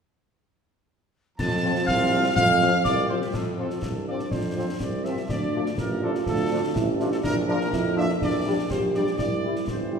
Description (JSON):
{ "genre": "military-style march for wind band", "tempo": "123 BPM", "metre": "2/4", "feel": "straight", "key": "F major", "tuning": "A4 = 444 Hz", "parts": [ { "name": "clear trumpet section", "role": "melody", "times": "1.4-10.0 s", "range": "G4 to A5", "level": "-28 LUFS", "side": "right 2 dB", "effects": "none" }, { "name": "mellow hollow piccolo", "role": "second line", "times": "1.4-3.2 s", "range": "C6 to A6", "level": "-29 LUFS", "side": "left 3 dB", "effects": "none" }, { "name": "warm trombone section", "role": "sustained chords", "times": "1.4-10.0 s", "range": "F3 to E4", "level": "-32 LUFS", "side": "left 1 dB", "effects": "none" }, { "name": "clear tuba", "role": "bass", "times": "1.4-10.0 s", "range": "G1 to F2", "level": "-27 LUFS", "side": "right 1 dB", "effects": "none" }, { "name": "concert snare drum, clash cymbals and concert bass drum", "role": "drums", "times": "1.4-9.9 s", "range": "none", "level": "-31 LUFS", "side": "left 1 dB", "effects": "none" }, { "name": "mellow French horn section", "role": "accompaniment", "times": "1.6-10.0 s", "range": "F3 to G4", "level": "-33 LUFS", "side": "left 5 dB", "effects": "none" }, { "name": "warm euphonium", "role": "second line", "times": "3.8-10.0 s", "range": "C4 to G4", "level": "-29 LUFS", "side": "right 4 dB", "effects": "none" } ], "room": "wet scoring stage reverb, RT60 1.6 s", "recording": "heard from further back in the room", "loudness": "-22 LUFS", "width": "side -6 dB against mid", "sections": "1.4-3.3 A section; 3.3-10.0 B section", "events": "none", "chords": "1.4 F; 5.3 Dm; 7.2 Bb; 8.2 Gm/Bb; 9.2 C" }